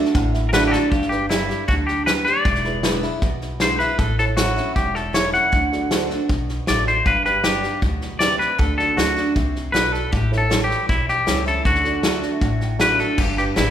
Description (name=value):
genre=honky-tonk and classic country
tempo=156 BPM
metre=4/4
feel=straight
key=G major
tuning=A4 = 439 Hz
part: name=picked steel-string acoustic guitar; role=accompaniment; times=0.0-13.7 s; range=E2 to G4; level=-26 LUFS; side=equal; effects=none
part: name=warm grand piano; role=accompaniment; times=0.0-13.7 s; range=D4 to A5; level=-29 LUFS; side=right 5 dB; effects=none
part: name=upright bass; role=bass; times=0.1-13.7 s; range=E1 to D2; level=-26 LUFS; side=equal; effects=none
part: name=natural country drum kit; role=drums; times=0.1-13.7 s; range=crash cymbal, hi-hat, kick drum, snare drum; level=-23 LUFS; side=equal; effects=none
part: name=twangy electric guitar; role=melody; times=0.5-13.7 s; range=E4 to F#5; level=-21 LUFS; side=left 1 dB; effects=none
room=moderate recital hall reverb, RT60 1.3 s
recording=recorded in a church or concert hall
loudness=-17 LUFS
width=side -10 dB against mid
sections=0.9-13.2 A section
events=grand piano fill 0.0-0.9, 12.0-13.2; drum fill 0.7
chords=0.0 D; 0.9 G; 2.5 E7; 4.0 A; 5.5 D; 7.1 G; 8.6 D; 10.1 A7; 11.7 D; 13.2 G